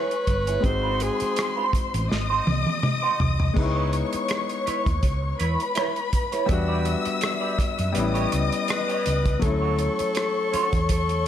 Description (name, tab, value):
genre	lush 1970s-style soul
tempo	82 BPM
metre	4/4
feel	swing 54% on 16ths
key	unclear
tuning	A4 = 437 Hz
part	clear alto saxophone	melody	0.0-1.7, 8.7-11.3 s	G#4 to B#4	-27 LUFS	equal	none
part	dark studio string section	second line	0.0-11.3 s	B4 to E6	-28 LUFS	left 4 dB	analog delay
part	clear grand piano	accompaniment	0.0-11.3 s	F#3 to F#4	-30 LUFS	left 4 dB	none
part	semi-hollow electric guitar	riff	0.0-11.1 s	D4 to D5	-30 LUFS	right 7 dB	wah
part	warm soul drum kit	drums	0.1-11.2 s	hi-hat, kick drum, rim click, snare drum, splash cymbal, toms	-27 LUFS	right 1 dB	none
part	hollow-body short-scale fingered electric bass	bass	0.3-11.3 s	G1 to F#2	-26 LUFS	right 1 dB	none
room	light reverb, small room ambience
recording	none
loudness	-21 LUFS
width	side -10 dB against mid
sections	0.0-11.3 A section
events	drum fill 2.1-3.6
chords	0.0 Amaj7 (rootless); 0.6 G#7; 3.6 C#m7; 6.5 Em7; 8.0 A7; 9.4 Dmaj7